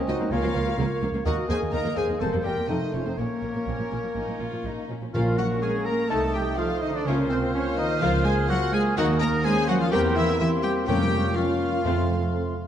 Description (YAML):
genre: quick classical-period movement for symphony orchestra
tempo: 125 BPM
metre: 4/4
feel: straight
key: Bb minor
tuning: A4 = 439 Hz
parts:
  - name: clear clarinet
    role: second line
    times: 0.0-12.6 s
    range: Bb3 to Bb4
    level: -33 LUFS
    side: left 1 dB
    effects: none
  - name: clear oboe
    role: second line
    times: 0.0-12.6 s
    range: C5 to Bb5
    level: -35 LUFS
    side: equal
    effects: none
  - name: warm bassoon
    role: accompaniment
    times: 0.0-12.6 s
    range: A3 to Db4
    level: -32 LUFS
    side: right 3 dB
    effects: none
  - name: clear French horn section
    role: sustained chords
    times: 0.0-12.6 s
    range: A3 to Bb4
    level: -32 LUFS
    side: left 4 dB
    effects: none
  - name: warm studio violin section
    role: melody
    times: 0.1-12.6 s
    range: Bb4 to Bb5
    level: -34 LUFS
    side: left 5 dB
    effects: none
  - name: bright small flute group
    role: second line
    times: 0.1-12.6 s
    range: Db4 to F6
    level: -35 LUFS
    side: equal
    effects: none
  - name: warm chamber violin section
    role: second line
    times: 0.1-12.1 s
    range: G3 to F4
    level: -33 LUFS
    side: left 4 dB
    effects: none
  - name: warm chamber viola section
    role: accompaniment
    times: 0.1-12.6 s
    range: Eb3 to C5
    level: -34 LUFS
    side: right 1 dB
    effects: none
  - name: clear chamber double bass section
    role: bass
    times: 0.1-12.2 s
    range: E1 to F2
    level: -30 LUFS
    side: right 2 dB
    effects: none
  - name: dark chamber cello section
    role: bass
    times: 0.1-12.6 s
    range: Db2 to Bb3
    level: -30 LUFS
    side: right 2 dB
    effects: none
  - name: warm trumpet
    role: stabs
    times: 5.1-12.6 s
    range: C4 to Bb4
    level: -31 LUFS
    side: right 2 dB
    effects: none
  - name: timpani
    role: percussion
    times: 5.1-5.8, 10.9-12.5 s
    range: F2 to Bb2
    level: -29 LUFS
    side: left 1 dB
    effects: none
room: moderate scoring stage reverb, RT60 1.5 s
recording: dark, warm production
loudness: -22 LUFS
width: side -9 dB against mid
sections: 0.0-5.1 A section; 5.1-12.7 B section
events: none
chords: 0.0 Bbm/Db; 1.3 Eb5; 2.2 C7/E; 2.7 F7; 3.2 Bbm; 6.1 Adim/C; 7.1 Bbm/Db; 9.0 Ebm; 9.9 C7/E; 10.9 Bbm/F; 11.8 F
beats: 0.31 0.79 | 1.26 1.73 2.21 2.69 | 3.18 3.67 4.16 4.65 | 5.14 5.62 6.10 6.58 | 7.07 7.54 8.02 8.49 | 8.97 9.44 9.91 10.39 | 10.88 11.36 11.85 12.33